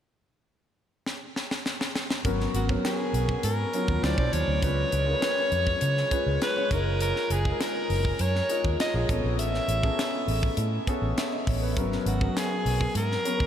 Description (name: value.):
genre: polished 1980s jazz-funk pop.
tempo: 101 BPM.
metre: 4/4.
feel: straight.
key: unclear.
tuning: A4 = 441 Hz.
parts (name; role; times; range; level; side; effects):
tight funk drum kit; drums; 1.1-13.5 s; hi-hat, kick drum, snare drum; -31 LUFS; equal; none.
warm concert grand piano; accompaniment; 2.2-13.5 s; F#3 to E5; -30 LUFS; left 2 dB; wide subtle chorus.
vintage muted fingered electric bass; bass; 2.2-13.5 s; F#1 to C#3; -28 LUFS; equal; none.
breathy alto saxophone; melody; 2.6-13.5 s; F#4 to E5; -29 LUFS; equal; none.
room: wet huge ambient reverb, RT60 7.2 s.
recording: dreamy mix soaked in reverb.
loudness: -24 LUFS.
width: side -9 dB against mid.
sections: 0.0-2.2 A section; 2.2-13.5 B section.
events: drum fill 1.1-2.2.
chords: 0.0 N.C.; 2.2 G#m11; 4.0 D9; 4.6 C#7; 6.7 F#maj13; 9.1 Amaj9; 11.8 G#m11.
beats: 0.46 1.05 1.65 | 2.25 2.84 3.44 4.03 | 4.63 5.22 5.82 6.41 | 7.01 7.60 8.20 8.79 | 9.39 9.98 10.58 11.17 | 11.77 12.36 12.96.